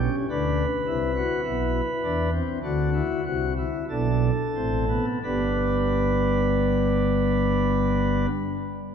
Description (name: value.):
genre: classical, baroque-style 3-part fugue for pipe organ.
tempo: 43-54 BPM.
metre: 4/4.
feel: straight.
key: G major.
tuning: A4 = 440 Hz.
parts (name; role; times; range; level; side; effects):
pipe organ, sparkling flutes; solo; 0.0-8.3 s; G1 to B4; -22 LUFS; equal; none.
room: wet church reverb, RT60 3.1 s.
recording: dark, warm production.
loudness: -22 LUFS.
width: side -7 dB against mid.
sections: 0.0-5.2 A section; 5.2-8.9 B section.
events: slowing down 0.0-5.2.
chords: 0.3 D13; 2.6 D7; 5.2 G.